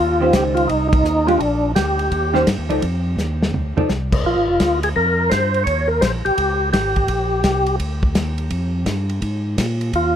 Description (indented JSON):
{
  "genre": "soul jazz organ trio",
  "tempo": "169 BPM",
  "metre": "4/4",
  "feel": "swing 65% on 8ths",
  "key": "Bb mixolydian",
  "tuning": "A4 = 438 Hz",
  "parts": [
    { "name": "percussive tonewheel organ", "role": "melody", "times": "0.0-7.8, 10.0-10.2 s", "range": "D4 to Db5", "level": "-19 LUFS", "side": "equal", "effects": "slow rotary speaker, overdrive, chorus vibrato" },
    { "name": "tonewheel organ", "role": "bass", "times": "0.0-10.2 s", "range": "F1 to Bb2", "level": "-22 LUFS", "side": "equal", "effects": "overdrive, chorus vibrato, slow rotary speaker" },
    { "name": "vintage hollow-body jazz guitar", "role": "accompaniment", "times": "0.2-3.9 s", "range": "Eb3 to D5", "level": "-22 LUFS", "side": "right 1 dB", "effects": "none" },
    { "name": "warm soul drum kit", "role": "drums", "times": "0.3-10.0 s", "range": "crash cymbal, hi-hat, kick drum, ride cymbal, snare drum, toms", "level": "-23 LUFS", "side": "equal", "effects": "none" }
  ],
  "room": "little or no reverb",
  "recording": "none",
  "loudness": "-16 LUFS",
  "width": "side -9 dB against mid",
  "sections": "0.0-4.2 A section; 4.2-10.2 A section",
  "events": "band accent 0.9; drum fill 3.2-3.9",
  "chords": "0.0 Eb13; 1.4 Bb6; 2.1 Eb13; 2.8 F5; 4.2 Bb13; 5.7 Eb7; 7.1 Bb13",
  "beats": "0.34 0.69 1.05 | 1.40 1.76 2.11 2.47 | 2.82 3.18 3.53 3.89 | 4.24 4.60 4.96 5.31 | 5.67 6.02 6.38 6.73 | 7.09 7.44 7.80 8.15 | 8.51 8.87 9.22 9.58 | 9.93"
}